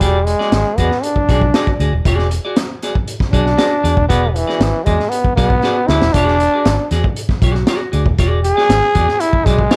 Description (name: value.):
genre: funk.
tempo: 117 BPM.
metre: 4/4.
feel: straight.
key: E mixolydian.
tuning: A4 = 440 Hz.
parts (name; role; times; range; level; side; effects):
growling trombone; melody; 0.0-9.8 s; E3 to G#4; -18 LUFS; equal; slapback echo, plate reverb.
clean electric guitar; accompaniment; 0.0-9.8 s; F#4 to D5; -24 LUFS; equal; plate reverb.
vintage muted fingered electric bass; bass; 0.0-9.7 s; D#1 to E2; -19 LUFS; equal; none.
crunchy breakbeat drum kit; drums; 0.0-9.8 s; hi-hat, kick drum, snare drum; -20 LUFS; equal; none.
room: light reverb.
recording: none.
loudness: -15 LUFS.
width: mono.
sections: 0.0-9.8 A section.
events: trombone solo 0.0-9.8; drum fill 5.6-6.1.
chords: 0.0 E9.